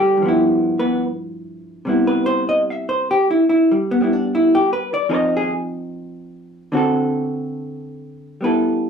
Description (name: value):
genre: jazz ballad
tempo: 73 BPM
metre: 4/4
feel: swing 68% on 8ths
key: C major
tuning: A4 = 438 Hz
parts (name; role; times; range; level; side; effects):
- vintage hollow-body jazz guitar; solo; 0.0-8.9 s; G2 to E5; -17 LUFS; equal; none
room: wet studio ambience, RT60 0.5 s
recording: band playing live in one room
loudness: -16 LUFS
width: side -6 dB against mid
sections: 0.0-8.4 A section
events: none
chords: 0.2 G6; 1.8 Cmaj7; 5.1 F7(no3); 6.7 D7; 8.4 G69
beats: 0.18 0.99 | 1.81 2.62 3.44 4.25 | 5.07 5.89 6.71 7.56 | 8.39